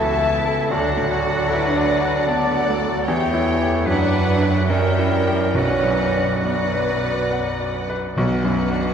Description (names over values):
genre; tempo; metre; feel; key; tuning
classical, romantic movement for piano and orchestra; 67-77 BPM; 3/4; rubato; B minor; A4 = 440 Hz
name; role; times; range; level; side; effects
bright baby grand piano; melody; 0.0-8.9 s; A1 to A5; -23 LUFS; left 2 dB; none
rich studio violin section; melody; 0.0-8.9 s; D5 to A5; -30 LUFS; left 4 dB; none
clear oboe; second line; 0.0-7.7 s; E4 to D5; -29 LUFS; right 1 dB; none
concert flute; second line; 0.0-7.8 s; D5 to A5; -32 LUFS; left 2 dB; none
rich studio violin section; second line; 0.0-8.9 s; F#4 to F#5; -31 LUFS; left 2 dB; none
warm clarinet; second line; 0.0-7.8 s; A#4 to E5; -33 LUFS; equal; none
rich studio viola section; accompaniment; 0.0-7.9 s; G4 to B4; -31 LUFS; right 1 dB; none
warm bassoon; accompaniment; 0.0-7.8 s; E3 to G3; -27 LUFS; left 1 dB; none
mellow French horn section; sustained chords; 0.0-7.8 s; F#4 to E5; -28 LUFS; left 1 dB; none
rich studio cello section; bass; 0.0-8.9 s; B2 to F#4; -26 LUFS; right 3 dB; none
rich studio double bass section; bass; 0.0-8.9 s; B1 to F#2; -25 LUFS; right 3 dB; none
timpani; percussion; 5.5-8.9 s; B2; -28 LUFS; right 1 dB; none
room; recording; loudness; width
wet cathedral reverb, RT60 6.0 s; recorded in a church or concert hall; -17 LUFS; side -7 dB against mid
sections
0.0-8.2 A section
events
none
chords
0.0 A; 0.7 D; 3.1 C#dim/E; 3.9 Bm/F#; 4.7 F#7b9; 5.5 Bm